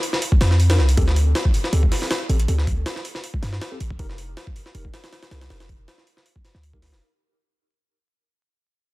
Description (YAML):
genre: drum and bass, jungle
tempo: 159 BPM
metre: 4/4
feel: swing 53% on 16ths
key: unclear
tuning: A4 = 440 Hz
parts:
  - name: jungle sampler-style drum kit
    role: drums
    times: 0.0-7.0 s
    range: hi-hat, kick drum, snare drum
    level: -22 LUFS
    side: equal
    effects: overdrive
  - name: warm 808-style bass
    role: bass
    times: 0.4-7.0 s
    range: F1 to G2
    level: -18 LUFS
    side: equal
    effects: none
  - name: mellow tine electric piano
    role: stabs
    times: 0.7-6.8 s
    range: C4 to Bb4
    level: -33 LUFS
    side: equal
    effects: medium stereo tremolo, low-pass filter, dub echo
room: little or no reverb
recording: dense, heavily limited modern master, vinyl crackle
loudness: -18 LUFS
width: side -20 dB against mid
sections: 0.0-7.0 A section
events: fade-out 0.0-7.0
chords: 0.0 N.C.; 1.0 D7sus4; 4.0 N.C.